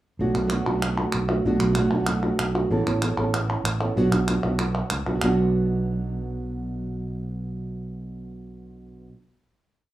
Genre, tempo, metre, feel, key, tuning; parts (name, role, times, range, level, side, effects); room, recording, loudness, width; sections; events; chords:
flamenco; 191 BPM; 4/4; straight; B minor; A4 = 440 Hz
nylon-string guitar; accompaniment; 0.2-9.1 s; B2 to A4; -25 LUFS; equal
flamenco guitar; stabs; 0.2-9.1 s; B2 to F#4; -34 LUFS; right 5 dB
sustaining fretless electric bass; bass; 0.2-9.1 s; A1 to C#2; -27 LUFS; right 2 dB
palmas hand claps; percussion; 0.3-5.3 s; -28 LUFS; right 1 dB
moderate studio reverb, RT60 0.5 s; rough home demo mix, small room reverb; -22 LUFS; side -14 dB against mid
0.2-5.2 groove; 5.2-7.7 final chord
0.2 Bm7; 2.7 Aadd9; 4.0 Bm